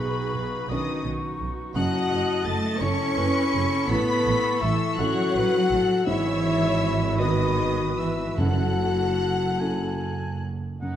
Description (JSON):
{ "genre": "cinematic, emotional film score for orchestra", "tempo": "48-58 BPM (dotted quarters)", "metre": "6/8", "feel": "rubato", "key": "F# dorian", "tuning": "A4 = 440 Hz", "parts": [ { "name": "clear studio violin section", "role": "melody", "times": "0.0-11.0 s", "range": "B4 to C#7", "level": "-34 LUFS", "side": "left 3 dB", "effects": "none" }, { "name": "mellow hollow concert flute", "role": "second line", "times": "0.0-10.4 s", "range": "A5 to C#6", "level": "-34 LUFS", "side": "left 2 dB", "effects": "none" }, { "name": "rich studio violin section", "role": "second line", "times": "0.0-11.0 s", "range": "F#4 to C#6", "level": "-33 LUFS", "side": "left 4 dB", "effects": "none" }, { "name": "warm clarinet", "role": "second line", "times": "0.0-10.5 s", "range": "D#4 to F#4", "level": "-35 LUFS", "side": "left 2 dB", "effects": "none" }, { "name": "warm oboe", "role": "second line", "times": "0.0-11.0 s", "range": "B4 to C#6", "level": "-35 LUFS", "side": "right 1 dB", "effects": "none" }, { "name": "felt-muted upright piano", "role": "accompaniment", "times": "0.0-11.0 s", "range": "B1 to B4", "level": "-31 LUFS", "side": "left 1 dB", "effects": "none" }, { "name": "rich studio viola section", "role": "accompaniment", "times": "0.0-11.0 s", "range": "D#4 to D#5", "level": "-34 LUFS", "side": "right 2 dB", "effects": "none" }, { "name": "dark French horn section", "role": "sustained chords", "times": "0.0-11.0 s", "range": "E3 to C#5", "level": "-28 LUFS", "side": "left 4 dB", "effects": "none" }, { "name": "clear studio cello section", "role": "bass", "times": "0.0-11.0 s", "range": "F#2 to C#4", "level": "-29 LUFS", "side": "right 2 dB", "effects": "none" }, { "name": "rich studio double bass section", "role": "bass", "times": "0.0-11.0 s", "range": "F#1 to B1", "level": "-29 LUFS", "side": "right 3 dB", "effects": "none" }, { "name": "timpani", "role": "percussion", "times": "8.4-9.6 s", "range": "F#2", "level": "-30 LUFS", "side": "equal", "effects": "none" } ], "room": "wet scoring stage reverb, RT60 1.5 s", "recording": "dark, warm production", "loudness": "-22 LUFS", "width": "side -10 dB against mid", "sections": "0.0-10.8 A section", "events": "none", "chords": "0.0 Badd9; 1.8 F#m7; 3.9 A; 6.1 Eadd9/G#; 8.4 F#m7" }